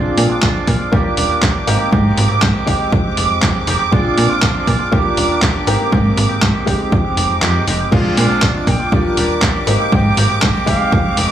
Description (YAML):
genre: filtered disco house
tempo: 120 BPM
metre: 4/4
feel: straight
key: Bb mixolydian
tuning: A4 = 441 Hz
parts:
  - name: warm concert grand piano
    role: accompaniment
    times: 0.0-11.3 s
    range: G3 to Ab4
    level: -20 LUFS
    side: left 1 dB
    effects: phaser, sidechain pumping, low-pass filter
  - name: dark symphonic violin section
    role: sustained chords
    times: 0.0-11.3 s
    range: D6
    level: -22 LUFS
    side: right 6 dB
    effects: sidechain pumping, low-pass filter
  - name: electric guitar with an envelope filter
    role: riff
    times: 0.0-11.3 s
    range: Eb3 to G4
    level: -22 LUFS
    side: right 2 dB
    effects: sidechain pumping, low-pass filter
  - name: slap-like FM bass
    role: bass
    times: 0.0-11.3 s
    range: Eb1 to Bb2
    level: -17 LUFS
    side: right 1 dB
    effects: sidechain pumping, low-pass filter
  - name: dusty soul sampler-style drum kit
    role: drums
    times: 0.2-11.3 s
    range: crash cymbal, handclaps, hi-hat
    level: -20 LUFS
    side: equal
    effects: sidechain pumping on hats, sidechain pumping on cymbals
  - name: electronic kick drum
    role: drums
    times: 0.4-11.0 s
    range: none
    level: -16 LUFS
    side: equal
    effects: overdrive
  - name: concert flute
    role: melody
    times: 8.7-11.2 s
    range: F5 to G5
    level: -24 LUFS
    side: equal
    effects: vintage 12-bit sampler grit, sidechain pumping, low-pass filter, tape echo
room: small room ambience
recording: studio reverb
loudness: -12 LUFS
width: side -10 dB against mid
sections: 0.0-7.9 A section; 7.9-11.3 B section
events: kick drops out 7.4-7.9; drop 7.9-11.3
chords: 0.0 Bb7; 0.9 Ebmaj7; 1.7 Abmaj7; 2.7 Fm9; 3.9 Bb7; 4.9 Ebmaj7; 5.7 Abmaj7; 6.7 Fm9; 7.9 Bb7; 8.9 Ebmaj7; 9.7 Abmaj7; 10.7 Fm9